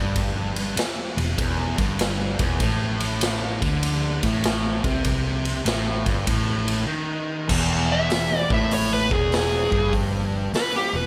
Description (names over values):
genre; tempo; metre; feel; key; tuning
blues rock power trio and southern rock; 98 BPM; 4/4; swing 66% on 8ths; unclear; A4 = 440 Hz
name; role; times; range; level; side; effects
fuzz guitar; riff; 0.0-11.1 s; E2 to D#3; -28 LUFS; equal; distortion
vintage muted fingered electric bass; bass; 0.0-11.1 s; E1 to D2; -31 LUFS; equal; none
raw garage drum kit; drums; 0.2-10.7 s; crash cymbal, hi-hat, kick drum, ride cymbal, snare drum; -27 LUFS; equal; none
dark smooth lead guitar; melody; 7.9-11.1 s; G4 to E5; -26 LUFS; equal; overdrive, slapback echo
room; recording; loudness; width
light reverb; none; -23 LUFS; mono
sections
0.0-7.5 A section; 7.5-11.1 B section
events
break 6.9-7.5; lead electric guitar solo 7.5-11.1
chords
0.0 Em; 2.6 Gsus4 (rootless); 7.5 E